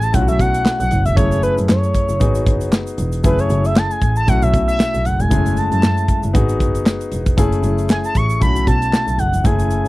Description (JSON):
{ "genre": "early-eighties boogie funk", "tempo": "116 BPM", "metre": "4/4", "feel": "swing 56% on 16ths", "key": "F# dorian", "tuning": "A4 = 444 Hz", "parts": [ { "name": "expressive synth lead", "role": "melody", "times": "0.0-9.9 s", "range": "B4 to C#6", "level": "-20 LUFS", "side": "equal", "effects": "chorus, slapback echo" }, { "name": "warm grand piano", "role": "accompaniment", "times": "0.0-9.9 s", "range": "G#3 to G#4", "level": "-22 LUFS", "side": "left 3 dB", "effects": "none" }, { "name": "rich double bass", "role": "bass", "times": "0.0-9.9 s", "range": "E1 to B2", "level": "-18 LUFS", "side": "equal", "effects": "none" }, { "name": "modern studio drum kit", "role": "drums", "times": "0.0-9.9 s", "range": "handclaps, hi-hat, kick drum, snare drum", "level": "-17 LUFS", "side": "equal", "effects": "none" }, { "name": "egg shaker", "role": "percussion", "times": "0.0-9.9 s", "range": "none", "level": "-39 LUFS", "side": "right 10 dB", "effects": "none" } ], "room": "little or no reverb", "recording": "dry, close 1970s-style studio recording", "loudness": "-14 LUFS", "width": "side -19 dB against mid", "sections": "0.0-9.9 A section", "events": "none", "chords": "0.1 B9sus4; 1.2 F#m9; 2.2 G#m7; 3.2 F#m9; 4.3 B9sus4; 5.3 F#m9; 6.3 G#m7; 7.4 F#m9; 8.4 B9sus4", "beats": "0.14 0.66 | 1.17 1.69 2.21 2.72 | 3.24 3.76 4.28 4.79 | 5.31 5.83 6.34 6.86 | 7.38 7.90 8.41 8.93 | 9.45" }